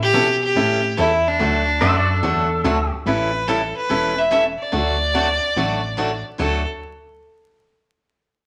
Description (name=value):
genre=country, western swing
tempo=144 BPM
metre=4/4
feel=swing 68% on 8ths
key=D major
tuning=A4 = 442 Hz
part: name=clear fiddle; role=melody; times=0.0-6.7 s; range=D4 to E5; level=-22 LUFS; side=equal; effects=none
part: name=plucky analog bass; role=bass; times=0.0-6.7 s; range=E1 to B2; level=-26 LUFS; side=equal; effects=none
part: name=picked swing-style acoustic guitar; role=accompaniment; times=0.1-6.6 s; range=D3 to A4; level=-26 LUFS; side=equal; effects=none
part: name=pedal steel guitar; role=second line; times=1.8-2.9 s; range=F#4 to E5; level=-23 LUFS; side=equal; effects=none
room=wet studio reverb, RT60 0.9 s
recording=vinyl crackle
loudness=-19 LUFS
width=mono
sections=0.0-3.1 A section; 3.1-6.4 B section; 6.4-8.1 C section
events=none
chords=0.0 A7; 1.4 D; 3.1 A7; 4.7 D